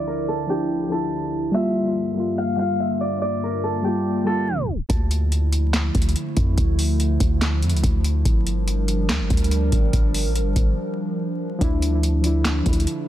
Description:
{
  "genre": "hip hop, trap",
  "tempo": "143 BPM",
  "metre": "4/4",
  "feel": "half-time",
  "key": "D minor",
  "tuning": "A4 = 440 Hz",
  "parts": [
    { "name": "Celtic harp", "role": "melody", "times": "0.0-6.5 s", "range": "G4 to F5", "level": "-26 LUFS", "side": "right 1 dB", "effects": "digital delay" },
    { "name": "muted felt-like synth keys", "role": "accompaniment", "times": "0.0-4.9, 11.6-13.1 s", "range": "F3 to F4", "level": "-24 LUFS", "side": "left 1 dB", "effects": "chorus, low-pass filter" },
    { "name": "warbly tape-like pad", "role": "sustained chords", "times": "0.0-13.1 s", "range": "D2 to Bb4", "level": "-28 LUFS", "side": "right 1 dB", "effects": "chorus, built-in reverb" },
    { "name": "warm 808-style bass", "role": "bass", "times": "4.9-12.9 s", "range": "G1 to F2", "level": "-21 LUFS", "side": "equal", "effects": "none" },
    { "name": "booming analog drum machine", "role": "drums", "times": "4.9-13.0 s", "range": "handclaps, hi-hat, kick drum, snare drum", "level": "-22 LUFS", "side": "equal", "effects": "none" }
  ],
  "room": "little or no reverb",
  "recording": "dense, heavily limited modern master, vinyl crackle, low-pass filter, tape stop",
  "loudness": "-19 LUFS",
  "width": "side -12 dB against mid",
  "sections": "0.0-4.9 A section; 4.9-13.1 B section",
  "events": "filter sweep 0.0-4.9; tape stop 4.5-4.9; break 10.8-11.6",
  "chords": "0.0 Dmadd9; 1.5 Gm7; 4.9 Dmadd9; 8.3 Gm7; 11.6 Dmadd9",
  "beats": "0.28 0.70 1.12 | 1.54 1.96 2.38 2.80 | 3.22 3.64 4.06 4.48 | 4.90 5.32 5.74 6.16 | 6.58 7.00 7.42 7.83 | 8.25 8.67 9.09 9.51 | 9.93 10.35 10.77 11.19 | 11.61 12.03 12.45 12.87"
}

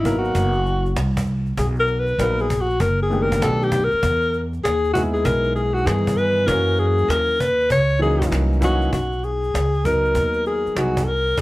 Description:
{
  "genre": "hip hop, jazz-hop",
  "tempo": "98 BPM",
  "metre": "4/4",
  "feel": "swing 65% on 16ths",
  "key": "B major",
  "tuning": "A4 = 440 Hz",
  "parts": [
    { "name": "mellow alto saxophone", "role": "melody", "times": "0.0-11.4 s", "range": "E4 to C#5", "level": "-20 LUFS", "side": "left 1 dB", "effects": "slapback echo" },
    { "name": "dark grand piano", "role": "accompaniment", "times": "0.0-11.0 s", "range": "D#3 to B4", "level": "-25 LUFS", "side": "equal", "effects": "none" },
    { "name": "upright bass", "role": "bass", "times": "0.0-11.4 s", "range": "F#1 to G2", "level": "-22 LUFS", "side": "equal", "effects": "none" },
    { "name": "cajon", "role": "drums", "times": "0.1-11.4 s", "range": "none", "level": "-28 LUFS", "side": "equal", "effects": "none" }
  ],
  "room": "little or no reverb",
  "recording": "vinyl crackle",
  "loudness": "-17 LUFS",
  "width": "side -18 dB against mid",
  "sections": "0.0-8.9 A section; 8.9-11.4 B section",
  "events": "alto saxophone solo 0.0-8.9",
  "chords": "0.0 Bmaj7; 3.4 B7alt; 4.0 Emaj7; 6.5 F#7; 8.9 Bmaj7",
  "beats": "0.35 0.97 | 1.58 2.19 2.80 3.42 | 4.03 4.64 5.25 5.87 | 6.48 7.09 7.70 8.31 | 8.93 9.54 10.15 10.76 | 11.38"
}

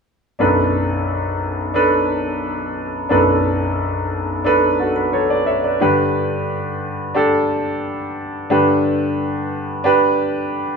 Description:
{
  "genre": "pop",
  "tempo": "89 BPM",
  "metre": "4/4",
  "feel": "straight",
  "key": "B minor",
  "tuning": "A4 = 439 Hz",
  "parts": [
    { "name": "clear concert grand piano", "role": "accompaniment", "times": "0.4-10.8 s", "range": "B1 to E5", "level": "-16 LUFS", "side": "equal", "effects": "none" }
  ],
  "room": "wet stone room reverb, RT60 1.1 s",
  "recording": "band playing live in one room",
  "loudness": "-16 LUFS",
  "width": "side -5 dB against mid",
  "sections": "0.4-10.8 A section",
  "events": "none",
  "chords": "0.4 Bm7; 5.8 G",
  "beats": "| 0.40 1.08 1.75 2.43 | 3.10 3.78 4.45 5.13 | 5.80 6.48 7.15 7.83 | 8.50 9.18 9.85 10.53"
}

